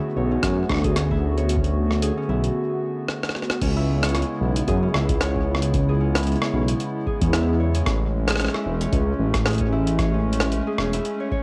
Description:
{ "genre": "IDM", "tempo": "113 BPM", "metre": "4/4", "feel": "swing 56% on 16ths", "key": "C# phrygian", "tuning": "A4 = 440 Hz", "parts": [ { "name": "hollow soft pad", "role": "sustained chords", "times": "0.0-11.4 s", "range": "C#3 to F#4", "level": "-30 LUFS", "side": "equal", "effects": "chorus, sidechain pumping, cassette tape" }, { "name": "concert harp", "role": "arpeggios", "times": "0.0-11.4 s", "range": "C#4 to C#5", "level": "-32 LUFS", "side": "equal", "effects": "cassette tape, analog delay" }, { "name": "dark detuned saw bass", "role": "bass", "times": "0.2-11.0 s", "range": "E1 to F#2", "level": "-24 LUFS", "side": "equal", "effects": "none" }, { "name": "electronic kick drum", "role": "drums", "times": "0.4-11.4 s", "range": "none", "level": "-28 LUFS", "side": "equal", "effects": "cassette tape" }, { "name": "jungle sampler-style drum kit", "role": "drums", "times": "0.4-11.2 s", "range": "crash cymbal, hi-hat, rim click", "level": "-29 LUFS", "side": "equal", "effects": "cassette tape" } ], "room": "light reverb", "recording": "home recording on cassette", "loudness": "-22 LUFS", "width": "mono", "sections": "0.0-3.6 A section; 3.6-11.4 B section", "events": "break 2.6-3.6; drum fill 3.1-3.6", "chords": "0.0 D6; 3.6 C#m7; 7.9 Amaj7", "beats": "0.43 0.96 | 1.49 2.02 2.55 3.08 | 3.62 4.15 4.68 5.21 | 5.74 6.27 6.80 7.33 | 7.86 8.39 8.93 9.46 | 9.99 10.52 11.05" }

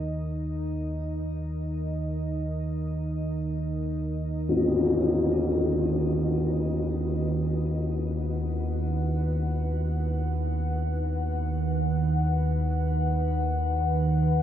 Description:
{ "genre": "dark ambient drone", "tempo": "free time", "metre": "none", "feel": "none", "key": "unclear", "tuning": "A4 = 440 Hz", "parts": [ { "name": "deep dark ambient pad", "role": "sustained chords", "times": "0.0-14.4 s", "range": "D#3 to F#5", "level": "-31 LUFS", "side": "equal", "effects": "chorus, built-in reverb, shimmer reverb" }, { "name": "deep rumbling drone", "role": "drone", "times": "0.0-14.4 s", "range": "Eb2 to Eb3", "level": "-28 LUFS", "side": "right 1 dB", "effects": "built-in reverb" }, { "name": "tam-tam", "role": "percussion", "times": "4.5-4.7 s", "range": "none", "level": "-28 LUFS", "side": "left 2 dB", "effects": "low-pass filter on cymbals" } ], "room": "wet cathedral reverb, RT60 5.4 s", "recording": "in a vast, echoing space", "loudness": "-25 LUFS", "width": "side -10 dB against mid", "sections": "0.0-14.4 A section", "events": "fade-in on synth drone 0.0-14.4", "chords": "0.0 Eb5; 4.5 B/D#", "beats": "free time" }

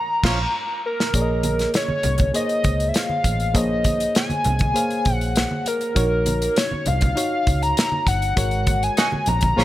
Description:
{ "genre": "lush 1970s-style soul", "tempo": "100 BPM", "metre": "4/4", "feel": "straight", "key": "Bb minor", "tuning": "A4 = 441 Hz", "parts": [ { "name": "hollow square lead", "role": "melody", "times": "0.0-9.6 s", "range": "Bb4 to Bb5", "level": "-23 LUFS", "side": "equal", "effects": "chorus" }, { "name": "clear horn section", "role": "stabs", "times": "0.2-0.4, 9.0-9.6 s", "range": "F3 to Gb4", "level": "-27 LUFS", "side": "right 4 dB", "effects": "none" }, { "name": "vintage muted fingered electric bass", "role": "bass", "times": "0.2-9.6 s", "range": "G1 to Db2", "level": "-23 LUFS", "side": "equal", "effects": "none" }, { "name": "warm soul drum kit", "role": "drums", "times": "0.2-9.6 s", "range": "crash cymbal, hi-hat, kick drum, snare drum", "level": "-22 LUFS", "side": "equal", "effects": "none" }, { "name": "bright reed electric piano", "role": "accompaniment", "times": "1.1-9.6 s", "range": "Ab3 to F5", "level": "-27 LUFS", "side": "left 2 dB", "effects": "overdrive" }, { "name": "congas", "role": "percussion", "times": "1.1-9.6 s", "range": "none", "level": "-30 LUFS", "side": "right 2 dB", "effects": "none" } ], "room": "light reverb, small room ambience", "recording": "none", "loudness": "-18 LUFS", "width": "side -14 dB against mid", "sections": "0.0-1.1 A section; 1.1-9.6 B section", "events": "reed electric piano fill 0.0-1.1; band accent 0.0-1.1, 8.4-9.6; drum fill 0.5-1.1", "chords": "0.0 Bbm; 1.1 Bbm11; 6.0 Ebm9/Bb; 8.4 Ab9sus4", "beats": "0.54 | 1.14 1.74 2.34 2.95 | 3.55 4.15 4.75 5.36 | 5.96 6.56 7.17 7.77 | 8.37 8.97 9.57" }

